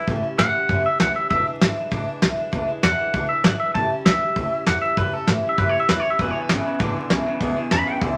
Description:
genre	rockabilly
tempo	197 BPM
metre	4/4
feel	straight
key	E mixolydian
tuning	A4 = 441 Hz
part	twangy electric guitar	melody	0.0-8.2 s	A4 to B5	-25 LUFS	equal	none
part	picked acoustic archtop guitar	accompaniment	0.0-8.2 s	E2 to E4	-28 LUFS	equal	none
part	upright bass	bass	0.1-8.1 s	E1 to A2	-31 LUFS	equal	none
part	soft brush drum kit	drums	0.1-8.1 s	hi-hat, kick drum, snare drum	-24 LUFS	equal	none
part	electric guitar through a small old amp	riff	6.2-8.2 s	E2 to D3	-29 LUFS	equal	none
room	moderate studio reverb, RT60 0.8 s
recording	vinyl crackle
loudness	-21 LUFS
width	mono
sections	0.0-8.2 A section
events	clean electric guitar solo 0.0-8.2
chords	0.1 A7; 1.3 E7; 3.8 A7; 6.2 E7

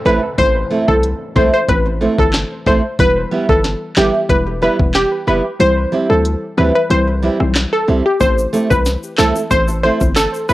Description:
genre	dancehall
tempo	92 BPM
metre	4/4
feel	straight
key	unclear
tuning	A4 = 440 Hz
part	downlifter	sound effects	0.0-3.0 s	none	-36 LUFS	equal	none
part	glassy wavetable pluck	melody	0.1-10.5 s	G4 to C5	-16 LUFS	equal	chorus, analog delay
part	nylon-string guitar	arpeggios	0.1-10.5 s	G3 to E4	-18 LUFS	right 3 dB	cassette tape
part	hard-hitting 808-style bass	bass	0.1-10.5 s	E1 to D2	-18 LUFS	equal	none
part	soft round pluck	accompaniment	0.4-10.2 s	E3 to E4	-23 LUFS	left 2 dB	chorus, sidechain pumping, cassette tape
part	afro-pop drum kit	drums	0.4-10.3 s	handclaps, hi-hat, kick drum, rim click, snare drum	-17 LUFS	equal	cassette tape
part	egg shaker	percussion	8.2-10.5 s	none	-33 LUFS	left 4 dB	none
room	digital ambience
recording	home recording on cassette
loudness	-12 LUFS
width	side -16 dB against mid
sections	0.0-10.5 A section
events	kick muted 5.6-8.2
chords	0.0 Am; 3.0 Em; 5.6 C; 8.2 Am

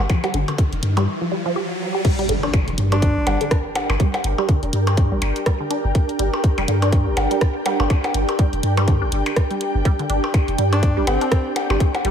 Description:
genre	minimal techno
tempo	123 BPM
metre	4/4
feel	swing 58% on 16ths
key	G minor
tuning	A4 = 441 Hz
part	punchy sub bass	bass	0.0-12.1 s	F1 to G2	-20 LUFS	equal	sidechain pumping
part	riser and impact	sound effects	0.0-4.0 s	none	-28 LUFS	equal	none
part	resonant blip pluck	riff	0.1-12.1 s	D3 to G4	-26 LUFS	right 2 dB	phaser, sidechain pumping, tape echo
part	electronic kick drum	drums	0.1-11.9 s	none	-18 LUFS	equal	none
part	garage drum kit	drums	0.1-12.1 s	crash cymbal, hi-hat, rim click	-27 LUFS	right 1 dB	none
part	percussion blips	percussion	0.1-12.0 s	none	-26 LUFS	left 1 dB	overdrive
part	ethereal airy pad	texture	2.8-12.1 s	D4 to G5	-24 LUFS	equal	ensemble chorus, built-in reverb, sidechain pumping
part	breathy alto saxophone	melody	2.9-3.6, 10.7-11.6 s	C4 to D4	-26 LUFS	equal	tape echo
room	light reverb, digital ambience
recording	none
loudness	-17 LUFS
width	side -8 dB against mid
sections	0.0-2.0 A section; 2.0-12.1 B section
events	riser 0.0-2.0; filter sweep on synth arpeggio sound 0.0-2.0; break 1.1-2.0; drop 2.0-12.1; impact 2.0-4.0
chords	0.0 G5

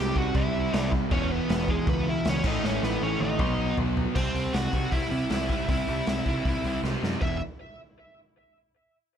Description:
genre	punk rock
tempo	157 BPM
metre	4/4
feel	straight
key	unclear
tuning	A4 = 438 Hz
part	bluesy overdriven lead guitar	melody	0.0-7.4 s	G#3 to G5	-32 LUFS	equal	distortion, tape echo
part	crunchy overdriven guitar	riff	0.0-4.2 s	E2 to C4	-33 LUFS	right 1 dB	none
part	raw garage guitar	riff	0.0-7.4 s	E2 to C4	-33 LUFS	left 17 dB	overdrive
part	sludgy distorted guitar	riff	0.0-7.4 s	E2 to C4	-32 LUFS	right 10 dB	overdrive
part	growling picked electric bass	bass	0.0-7.4 s	E1 to C3	-32 LUFS	equal	overdrive
part	raw garage drum kit	drums	0.2-7.3 s	crash cymbal, hi-hat, kick drum, snare drum, toms	-29 LUFS	equal	none
room	light reverb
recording	none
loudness	-24 LUFS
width	side -8 dB against mid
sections	0.0-4.2 A section; 4.2-7.2 B section; 7.2-8.8 C section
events	drum fill 2.6-4.2, 6.8-7.2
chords	0.0 C; 1.1 E; 2.4 A; 3.4 B; 4.2 C; 7.2 E5

